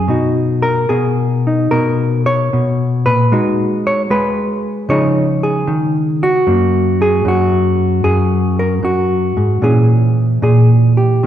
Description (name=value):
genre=solo jazz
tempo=76 BPM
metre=4/4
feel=swing 68% on 8ths, rubato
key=F# major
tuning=A4 = 440 Hz
part: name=hollow-body jazz guitar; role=solo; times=0.0-11.3 s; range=F#2 to C#5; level=-12 LUFS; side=equal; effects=none
room=wet concert hall reverb, RT60 1.8 s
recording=recorded in a church or concert hall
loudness=-12 LUFS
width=side -10 dB against mid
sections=0.0-11.3 A section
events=none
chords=0.1 Bmaj9; 3.3 G#m7; 4.9 C#add9; 6.5 F#add9; 9.6 A#m7b5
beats=| 0.07 0.89 1.72 2.52 | 3.33 4.12 4.91 5.70 | 6.48 7.26 8.03 8.82 | 9.62 10.41 11.23